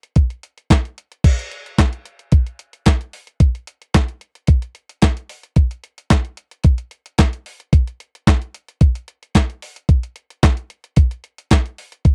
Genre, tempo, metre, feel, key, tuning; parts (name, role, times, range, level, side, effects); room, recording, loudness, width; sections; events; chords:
funk; 111 BPM; 4/4; straight
clean 12-bit digital drum machine; drums; 0.0-12.1 s; crash cymbal, handclaps, hi-hat, kick drum, snare drum; -15 LUFS; equal; overdrive
little or no reverb; dry, close 1970s-style studio recording; -19 LUFS; mono
0.0-1.2 A section; 1.2-12.1 B section